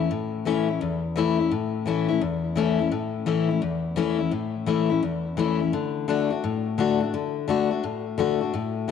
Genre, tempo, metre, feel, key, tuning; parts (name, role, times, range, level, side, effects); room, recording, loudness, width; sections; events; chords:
rock; 171 BPM; 4/4; swing 65% on 8ths; A major; A4 = 439 Hz
picked steel-string acoustic guitar; solo; 0.0-8.9 s; E2 to F#4; -22 LUFS; left 6 dB; tape echo
moderate echo chamber reverb, RT60 1.3 s, small room reverb; -22 LUFS; side -7 dB against mid
0.1-8.9 A section
0.1 A; 5.7 D